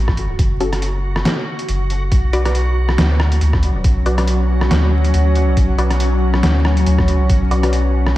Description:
deep dubstep; 139 BPM; 4/4; swing 56% on 16ths, half-time; A4 = 441 Hz
soft dub sub bass; bass; 0.0-8.1 s; F#1 to D2; -16 LUFS; equal
backwards swelling texture; texture; 0.0-8.2 s; F#4; -28 LUFS; right 1 dB; built-in reverb
electronic kick drum; drums; 0.1-7.4 s; -17 LUFS; equal; overdrive
trip hop sampler-style drum kit; drums; 0.1-8.1 s; hi-hat, rim click, snare drum; -22 LUFS; equal; overdrive
filtered dub chord stab; stabs; 0.6-7.8 s; C#4 to D5; -25 LUFS; left 2 dB; phaser, dub echo
bowed-like drone; sustained chords; 3.4-8.2 s; F#3 to C#4; -21 LUFS; left 1 dB; built-in reverb
moderate lush hall reverb, RT60 1.7 s, digital ambience; dreamy mix soaked in reverb, vinyl crackle; -14 LUFS; side -15 dB against mid
0.0-8.2 A section
0.0 F#m; 2.1 Bm

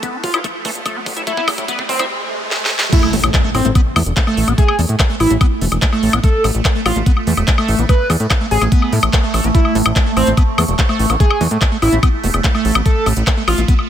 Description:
psychedelic trance; 145 BPM; 4/4; straight; A4 = 440 Hz
evolving wavetable pad; sustained chords; 0.0-13.9 s; A3; -24 LUFS; right 3 dB; phaser, built-in reverb, sidechain pumping
liquid acid bass; riff; 0.0-13.7 s; A3 to E4; -23 LUFS; moving between left 4 dB and right 4 dB; chorus, auto-pan, cassette tape, sidechain pumping, dub echo
drum and bass drum kit; drums; 0.0-13.9 s; crash cymbal, handclaps, hi-hat, snare drum, woodblock; -20 LUFS; left 2 dB; high-pass filter on perc, high-pass filter on hats, high-pass filter on snare, high-pass filter on cymbals, high-pass filter on room
electronic kick drum; drums; 0.0-13.8 s; -14 LUFS; equal
riser, swell and impact; sound effects; 0.2-4.6 s; -25 LUFS; right 2 dB
overdriven synth lead; melody; 0.2-13.6 s; C4 to B4; -21 LUFS; right 1 dB; distortion, phaser, cassette tape, sidechain pumping, dub echo
fat analog bass; bass; 0.2-13.6 s; E1 to A2; -17 LUFS; equal; high-pass filter
light reverb; high-pass filter; -13 LUFS; side -10 dB against mid
0.0-2.9 A section; 2.9-13.9 B section
build-up 0.0-2.9; drum fill 0.0-2.1, 2.5-2.9; riser 0.2-2.9; filter sweep on acid bass 0.0-2.9; swell 2.1-2.9; drop 2.9-13.9; impact 2.9-4.6
0.0 A5

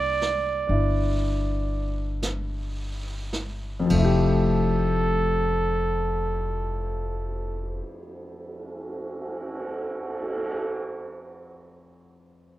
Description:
jazz ballad; 34-43 BPM; 4/4; swing 66% on 8ths; F major; A4 = 440 Hz
mellow trumpet; melody; 0.0-7.8 s; A4 to D5; -27 LUFS; right 4 dB
warm baby grand piano; accompaniment; 0.0-12.6 s; F2 to G4; -28 LUFS; left 3 dB
upright bass; bass; 0.0-7.8 s; F1 to C2; -27 LUFS; equal
jazz brush drum kit; drums; 0.2-10.6 s; brushed snare drum, cymbal swell, hi-hat, kick drum, ride cymbal, snare drum; -34 LUFS; right 2 dB
light reverb; close, detailed microphones; -24 LUFS; side -15 dB against mid
0.0-3.9 A section; 3.9-10.9 B section
slowing down 0.0-3.9
0.0 C9; 3.9 Fmaj9

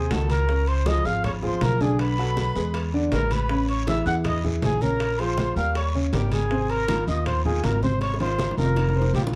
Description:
Afro-Cuban jazz; 159 BPM; 4/4; straight; Ab major; A4 = 440 Hz
breathy trumpet; melody; 0.0-9.2 s; G4 to Gb5; -30 LUFS; equal
breathy bright concert flute; second line; 0.0-9.4 s; G5 to Gb6; -37 LUFS; equal
warm baby grand piano; accompaniment; 0.0-9.4 s; C3 to D5; -30 LUFS; equal
upright bass; bass; 0.0-9.4 s; F1 to Fb2; -27 LUFS; equal
bongos; percussion; 0.1-9.4 s; -38 LUFS; equal
congas; percussion; 0.1-9.3 s; -33 LUFS; equal
guiro; percussion; 0.1-9.3 s; -44 LUFS; equal
timbales; percussion; 0.1-9.3 s; -40 LUFS; equal
moderate studio reverb, RT60 0.6 s; dark, warm production; -23 LUFS; mono
0.0-9.4 A section
drum fill 8.0-9.4
0.5 Db; 2.0 Bm7; 2.7 E7; 3.5 Amaj7; 5.0 Bbm7; 5.8 Eb7; 6.5 Ab69; 8.8 F5

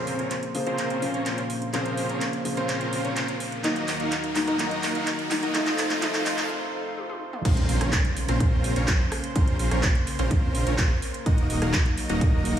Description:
EDM, festival progressive house; 126 BPM; 4/4; straight; Bb harmonic minor; A4 = 440 Hz
felt-muted upright piano; accompaniment; 0.0-7.5 s; Db3 to C5; -30 LUFS; left 2 dB; sidechain pumping, tape echo
lush unison pad; sustained chords; 0.0-12.6 s; Eb2 to C5; -33 LUFS; right 1 dB; chorus, sidechain pumping
dense compressed supersaw; riff; 0.0-12.6 s; A3 to F5; -29 LUFS; right 1 dB; sidechain pumping, low-pass filter, tape echo
riser and impact; sound effects; 0.0-9.4 s; -36 LUFS; equal
house drum kit; drums; 0.1-12.6 s; crash cymbal, handclaps, hi-hat, rim click, toms; -30 LUFS; right 1 dB
wide detuned saw bass; bass; 7.5-12.6 s; Eb1 to Bb1; -27 LUFS; equal; chorus, sidechain pumping
electronic kick drum; drums; 7.5-12.3 s; -23 LUFS; equal
light reverb; high-pass filter, studio reverb; -23 LUFS; side -10 dB against mid
0.0-7.5 A section; 7.5-12.6 B section
build-up 0.0-7.5; drum fill 0.0-6.5, 7.0-7.5; riser 0.0-6.5; break 6.5-7.5; drop 7.5-12.6; impact 7.5-9.4
0.0 Bbmadd9; 3.6 Ebm; 5.5 F; 7.5 Bbmadd9; 11.3 Ebm

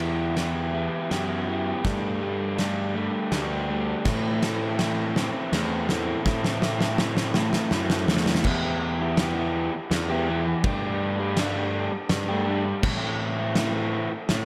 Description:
post-rock; 82 BPM; 3/4; straight; A4 = 444 Hz
crunchy overdriven guitar; riff; 0.0-14.2 s; A2 to G4; -29 LUFS; equal; spring reverb, slapback echo
fuzz picked electric bass; bass; 0.0-14.4 s; D2 to A2; -31 LUFS; equal; overdrive
loose indie drum kit; drums; 0.0-14.4 s; crash cymbal, kick drum, ride cymbal, snare drum; -30 LUFS; equal
moderate lush hall reverb, RT60 2.4 s; big arena sound; -26 LUFS; mono
0.0-8.5 A section; 8.5-14.4 B section
build-up 0.0-8.5; drum fill 0.0-8.5
0.0 Em; 1.9 Gsus2; 4.1 Am; 8.5 Em; 10.7 Gsus2; 12.8 Am

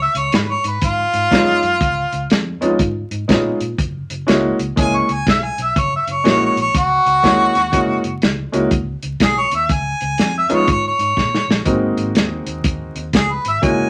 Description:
electric blues shuffle; 122 BPM; 4/4; swing 64% on 8ths; A4 = 441 Hz
warm harmonica; melody; 0.0-13.9 s; F4 to Db6; -19 LUFS; equal
vintage muted fingered electric bass; bass; 0.0-13.9 s; Gb1 to Bb2; -29 LUFS; equal
warm soul drum kit; drums; 0.1-13.8 s; hi-hat, kick drum, snare drum; -20 LUFS; equal
clear upright piano; accompaniment; 1.3-13.9 s; Ab3 to Ab4; -21 LUFS; equal
wet small room reverb, RT60 0.5 s; vinyl crackle; -17 LUFS; mono
0.0-13.9 A section
drum fill 11.2-11.7
0.0 Db9; 3.8 Gb9; 9.7 Db9; 11.7 Ab9

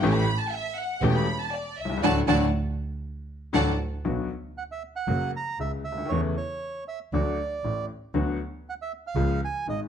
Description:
tango; 118 BPM; 4/4; rubato; D major, B minor from 4.1 s; A4 = 437 Hz
warm studio violin section; second line; 0.0-3.7 s; D5 to B5; -28 LUFS; right 1 dB
bright upright piano; accompaniment; 0.0-9.9 s; E1 to G4; -27 LUFS; left 4 dB
rich symphonic string section; stabs; 0.0-3.7 s; A3 to G4; -33 LUFS; right 6 dB
warm double bass; bass; 0.0-9.9 s; E1 to E2; -29 LUFS; right 3 dB
bandoneon; melody; 4.6-9.8 s; C#5 to A#5; -32 LUFS; right 6 dB
light reverb; dark, warm production; -25 LUFS; side -8 dB against mid
0.0-4.1 A section; 4.1-9.9 B section
violin section solo 0.0-4.1; band accent 2.0-4.1
0.0 A7; 2.0 D; 4.1 Bm; 5.1 F#; 6.1 A/E; 7.1 D; 8.1 Bm/D; 9.2 C#

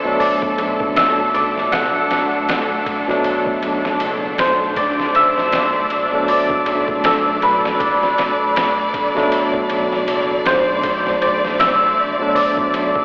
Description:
trip hop; 79 BPM; 4/4; swing 58% on 16ths; B phrygian; A4 = 436 Hz
santur; melody; 0.0-13.0 s; A4 to F#5; -20 LUFS; equal; dub echo
barky tine electric piano; accompaniment; 0.0-13.0 s; B2 to D4; -25 LUFS; equal; tremolo, tape echo
rich studio string section; sustained chords; 0.0-13.0 s; A3 to D5; -26 LUFS; equal
bowed-like drone; texture; 0.0-13.0 s; D4; -34 LUFS; equal
trip hop sampler-style drum kit; drums; 0.2-13.0 s; hi-hat, kick drum, ride cymbal, snare drum; -27 LUFS; equal; overdrive, small room reverb
round analog bass; bass; 0.6-13.0 s; F#1 to B1; -34 LUFS; equal
wet huge ambient reverb, RT60 8.9 s; dreamy mix soaked in reverb, telephone sound; -17 LUFS; mono
0.0-13.0 A section
0.0 Bm7

